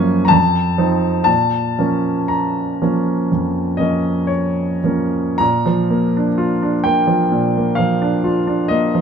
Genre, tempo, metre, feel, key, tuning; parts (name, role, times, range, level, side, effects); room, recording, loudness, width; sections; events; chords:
classical, romantic nocturne for solo piano; 51-69 BPM; 4/4; rubato; Bb minor, Bb major from 5.4 s; A4 = 443 Hz
clear grand piano; solo; 0.0-9.0 s; F2 to Bb5; -15 LUFS; equal
moderate large studio reverb, RT60 1.2 s; dark, warm production; -15 LUFS; side -7 dB against mid
0.0-5.4 A section; 5.4-9.0 B section
0.3 F7; 1.3 Bbm; 5.4 Bb